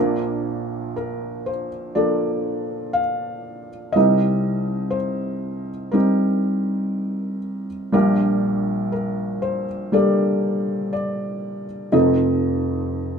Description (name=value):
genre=acoustic folk-pop ballad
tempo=60 BPM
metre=4/4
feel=straight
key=Bb major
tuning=A4 = 445 Hz
part: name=felt-muted upright piano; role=solo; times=0.0-13.2 s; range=F1 to F5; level=-20 LUFS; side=equal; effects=none
room=moderate studio reverb, RT60 0.7 s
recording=minimal, uncompressed stereo recording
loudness=-19 LUFS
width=side -6 dB against mid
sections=0.0-13.2 A section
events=felt piano fill 12.9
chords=0.0 Bbmaj7; 4.0 Cm7; 7.9 Gmadd9/Bb; 11.9 F7